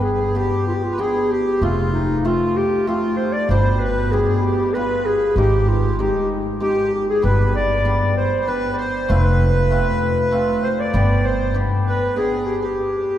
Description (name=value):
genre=klezmer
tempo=97 BPM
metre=3/4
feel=straight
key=G phrygian dominant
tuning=A4 = 439 Hz
part: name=mellow clarinet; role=melody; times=0.0-13.2 s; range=Eb4 to D5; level=-21 LUFS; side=left 1 dB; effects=none
part: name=accordion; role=second line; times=0.0-13.2 s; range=F4 to D5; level=-27 LUFS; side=right 1 dB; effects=none
part: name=cimbalom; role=accompaniment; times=0.0-12.5 s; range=B2 to G5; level=-24 LUFS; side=right 1 dB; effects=none
part: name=upright bass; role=bass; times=0.0-11.7 s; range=F1 to Ab1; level=-21 LUFS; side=equal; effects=none
room=wet cathedral reverb, RT60 4.5 s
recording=recorded in a church or concert hall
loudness=-16 LUFS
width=side -11 dB against mid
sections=0.0-13.2 A section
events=speeding up 0.0-13.2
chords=0.0 G; 1.6 F; 3.5 G; 5.4 Ab; 7.2 G; 9.1 F; 10.9 G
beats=0.36 0.99 | 1.62 2.25 2.87 | 3.50 4.13 4.75 | 5.37 6.00 6.62 | 7.24 7.86 8.48 | 9.09 9.71 10.33 | 10.94 11.55 12.16 | 12.78